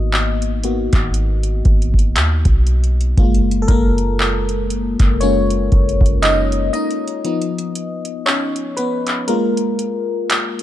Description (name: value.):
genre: contemporary R&B.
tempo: 59 BPM.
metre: 4/4.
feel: swing 58% on 16ths.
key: F# major.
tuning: A4 = 441 Hz.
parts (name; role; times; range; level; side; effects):
FM electric piano; accompaniment; 0.0-10.6 s; E#3 to D#5; -20 LUFS; left 2 dB; chorus, phaser.
clean 808-style bass; bass; 0.0-6.7 s; F#1 to D#2; -18 LUFS; equal; none.
booming analog drum machine; drums; 0.1-10.6 s; handclaps, hi-hat, kick drum; -17 LUFS; equal; overdrive.
room: digital ambience.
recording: dark, warm production.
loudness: -15 LUFS.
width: side -13 dB against mid.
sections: 0.0-10.6 A section.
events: FM electric piano solo 0.0-10.6; break 7.2-10.6.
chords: 0.0 G#m9; 3.2 F#maj7; 7.2 C#7; 9.3 Fmadd11/Ab.